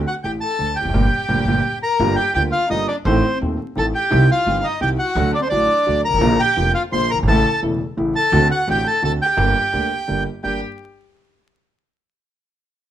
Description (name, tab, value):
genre	tango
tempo	171 BPM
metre	3/4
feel	rubato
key	G minor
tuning	A4 = 440 Hz
part	warm concert grand piano	accompaniment	0.0-10.6 s	Eb1 to A4	-21 LUFS	right 1 dB	none
part	upright bass	bass	0.0-10.6 s	E1 to Eb2	-22 LUFS	equal	none
part	bandoneon	melody	0.1-10.6 s	C5 to C6	-19 LUFS	right 1 dB	none
part	warm violin	second line	0.1-10.6 s	C4 to C5	-26 LUFS	left 4 dB	none
room	light reverb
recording	minimal, uncompressed stereo recording, vinyl crackle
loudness	-16 LUFS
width	side -11 dB against mid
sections	0.0-2.0 A section; 2.0-10.4 A section; 10.4-11.5 B section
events	band accent 0.9-2.0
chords	0.0 D; 0.9 Gm; 2.0 Gm7; 3.1 Adim; 4.1 Cm; 5.2 D; 6.2 Bb; 7.3 A; 8.3 D7; 9.4 Gm